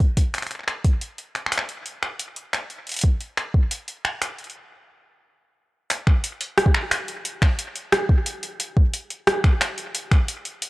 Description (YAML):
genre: IDM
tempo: 89 BPM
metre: 4/4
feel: straight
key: none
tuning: none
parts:
  - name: electro analog drum machine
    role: drums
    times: 0.0-10.7 s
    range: finger snaps, hi-hat, rim click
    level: -23 LUFS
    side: equal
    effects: none
  - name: electronic kick drum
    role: drums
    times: 0.0-10.2 s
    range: none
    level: -17 LUFS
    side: equal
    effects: overdrive
room: light reverb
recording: dry, gritty hardware recording, cassette tape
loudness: -21 LUFS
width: side -20 dB against mid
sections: 0.0-5.9 A section; 5.9-10.7 B section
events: stop 4.6-5.9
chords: none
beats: | 0.51 1.18 1.86 2.53 | 3.21 3.88 4.55 5.23 | 5.90 6.58 7.25 7.92 | 8.60 9.27 9.95 10.62